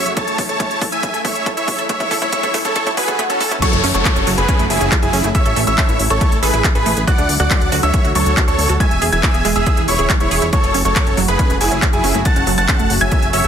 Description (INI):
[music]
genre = uplifting trance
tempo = 139 BPM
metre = 4/4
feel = straight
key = A major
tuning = A4 = 440 Hz
[part]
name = big supersaw lead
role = melody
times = 0.0-13.5 s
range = C#4 to A5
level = -19 LUFS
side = right 1 dB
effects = sidechain pumping, tape echo
[part]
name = lush unison pad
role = sustained chords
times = 0.0-13.5 s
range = C#3 to G#4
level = -27 LUFS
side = equal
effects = chorus, phaser, sidechain pumping
[part]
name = wide unison pluck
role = arpeggios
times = 0.0-13.5 s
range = F#3 to A4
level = -23 LUFS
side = right 4 dB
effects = sidechain pumping, ping-pong delay
[part]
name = plucky analog bass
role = bass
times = 0.0-13.5 s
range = D1 to D2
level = -20 LUFS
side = equal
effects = sidechain pumping
[part]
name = techno drum kit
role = drums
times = 0.1-13.5 s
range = crash cymbal, handclaps, hi-hat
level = -22 LUFS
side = equal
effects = sidechain pumping on hats, high-pass filter on hats, studio ambience, sidechain pumping on cymbals, high-pass filter on cymbals, high-pass filter on snare
[part]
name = electronic kick drum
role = drums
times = 0.2-13.2 s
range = none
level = -18 LUFS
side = equal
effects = studio ambience
[part]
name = swell and downlifter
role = sound effects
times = 2.9-7.1 s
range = none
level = -24 LUFS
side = left 1 dB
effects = none
[part]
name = warm grand piano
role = second line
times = 3.6-13.5 s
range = G#5 to A6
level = -24 LUFS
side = equal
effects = sidechain pumping, ping-pong delay
[sound]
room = light reverb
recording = dense, heavily limited modern master, high-pass filter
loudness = -13 LUFS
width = side -8 dB against mid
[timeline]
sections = 0.0-3.6 A section; 3.6-13.5 B section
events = build-up 0.0-3.6; drum fill 0.0-3.6; filter sweep on synth pluck 0.0-3.6; swell 2.9-3.6; drop 3.6-13.5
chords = 0.2 A; 3.6 F#madd9; 5.3 A; 7.1 D; 8.8 E; 10.5 F#madd9